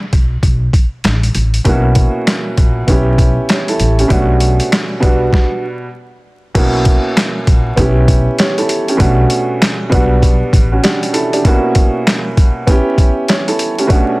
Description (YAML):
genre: hip hop, boom-bap hip-hop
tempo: 98 BPM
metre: 4/4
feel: swing 62% on 16ths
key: unclear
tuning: A4 = 440 Hz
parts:
  - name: upright bass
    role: bass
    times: 0.1-10.8 s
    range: A1 to B1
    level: -14 LUFS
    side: equal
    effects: none
  - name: boom bap sampler-style drum kit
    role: drums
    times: 0.1-14.1 s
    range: crash cymbal, handclaps, hi-hat, kick drum, snare drum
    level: -12 LUFS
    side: equal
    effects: overdrive
  - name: warm upright piano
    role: accompaniment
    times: 1.6-14.2 s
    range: B2 to C#5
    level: -15 LUFS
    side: right 1 dB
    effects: cassette tape, high-pass filter, low-pass filter
room: studio reverb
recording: dense, heavily limited modern master, vinyl crackle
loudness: -10 LUFS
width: side -22 dB against mid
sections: 0.0-6.6 A section; 6.6-14.2 B section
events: break 0.0-1.7; stop 5.3-6.6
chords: 0.1 Asus2; 1.7 F#7/B; 2.9 A7/B; 4.1 Bm7; 5.0 Gmaj7/B; 6.6 F#7/B; 7.8 A9/B; 9.0 Bm7; 9.9 A13sus4; 11.4 F#7/B; 12.7 A9/B